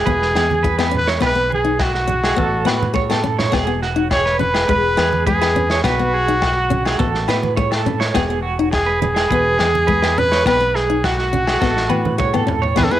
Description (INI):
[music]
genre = highlife guitar band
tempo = 104 BPM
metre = 4/4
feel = straight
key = E major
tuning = A4 = 440 Hz
[part]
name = clear trumpet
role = melody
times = 0.0-13.0 s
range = F#4 to C#5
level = -19 LUFS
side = equal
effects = cassette tape
[part]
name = fingerpicked steel-string acoustic guitar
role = accompaniment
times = 0.0-13.0 s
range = G#3 to D#4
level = -23 LUFS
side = left 6 dB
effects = cassette tape
[part]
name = electric guitar at the edge of break-up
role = arpeggios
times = 0.0-13.0 s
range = F#4 to C#5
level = -22 LUFS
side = right 7 dB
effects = tremolo, cassette tape, analog delay
[part]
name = fingered electric bass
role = bass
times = 0.0-13.0 s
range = E1 to A2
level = -23 LUFS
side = equal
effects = none
[part]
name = crunchy breakbeat drum kit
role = drums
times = 0.1-12.9 s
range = crash cymbal, kick drum, snare drum, toms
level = -23 LUFS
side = equal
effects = cassette tape
[part]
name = congas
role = percussion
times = 0.1-12.9 s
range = none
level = -26 LUFS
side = right 5 dB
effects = none
[part]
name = agogo bells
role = percussion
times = 0.4-12.9 s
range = none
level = -29 LUFS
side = left 10 dB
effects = none
[part]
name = breathy trombone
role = second line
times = 12.8-13.0 s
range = C#3 to E3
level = -22 LUFS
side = right 4 dB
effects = cassette tape
[sound]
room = moderate spring reverb, RT60 1.6 s, studio ambience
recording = home recording on cassette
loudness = -15 LUFS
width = side -12 dB against mid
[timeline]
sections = 0.0-12.8 A section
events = drum fill 3.1-3.5, 11.6-12.8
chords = 0.0 E; 1.2 B; 2.4 A; 3.5 E; 5.8 B; 7.0 A; 8.1 E; 10.5 B; 11.6 A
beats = 0.06 0.63 | 1.21 1.79 2.37 2.94 | 3.52 4.10 4.68 5.26 | 5.84 6.41 6.99 7.57 | 8.15 8.73 9.30 9.88 | 10.46 11.04 11.62 12.19 | 12.77